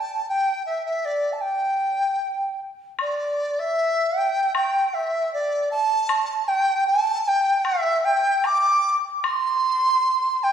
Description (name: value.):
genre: chinese traditional, Chinese chamber ensemble.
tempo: 77 BPM.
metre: 2/4.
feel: rubato.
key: G zhi mode.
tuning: A4 = 440 Hz.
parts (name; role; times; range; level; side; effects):
mellow dizi; melody; 0.0-10.5 s; D5 to D6; -20 LUFS; equal; none.
woodblock; percussion; 3.0-9.4 s; none; -29 LUFS; left 3 dB; none.
room: wet recital hall reverb, RT60 1.8 s.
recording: heard from further back in the room.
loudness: -20 LUFS.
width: side -8 dB against mid.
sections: 0.0-3.0 A section; 3.0-10.5 B section.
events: none.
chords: none.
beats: 0.63 | 1.41 2.19 | 2.99 3.77 | 4.55 5.33 | 6.09 6.87 | 7.65 8.44 | 9.23 10.03.